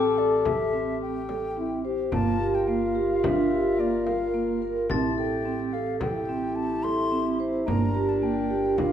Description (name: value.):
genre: contemporary instrumental, chamber music in an uneven meter.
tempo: 108 BPM.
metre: 5/4.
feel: straight.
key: A phrygian.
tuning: A4 = 440 Hz.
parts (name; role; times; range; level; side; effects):
wooden flute; melody; 0.0-8.9 s; D5 to C6; -33 LUFS; left 3 dB; none.
mellow French horn; second line; 0.0-8.9 s; D4 to A4; -27 LUFS; left 4 dB; none.
clear woodwind section; sustained chords; 0.0-8.9 s; G3 to Bb4; -35 LUFS; equal; none.
vibraphone with soft mallets; arpeggios; 0.0-8.9 s; Bb3 to C5; -27 LUFS; right 5 dB; none.
upright bass; bass; 0.0-8.9 s; G1 to A1; -35 LUFS; right 1 dB; none.
glockenspiel with hard plastic mallets; texture; 0.0-7.1 s; D6 to A6; -38 LUFS; left 10 dB; none.
frame drum; percussion; 0.2-8.9 s; none; -33 LUFS; left 2 dB; none.
room: wet recital hall reverb, RT60 1.4 s.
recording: none.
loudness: -23 LUFS.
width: side -9 dB against mid.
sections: 0.0-8.9 A section.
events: none.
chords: 0.0 Am7; 2.1 Gm7; 4.9 Am7; 7.7 Gm7.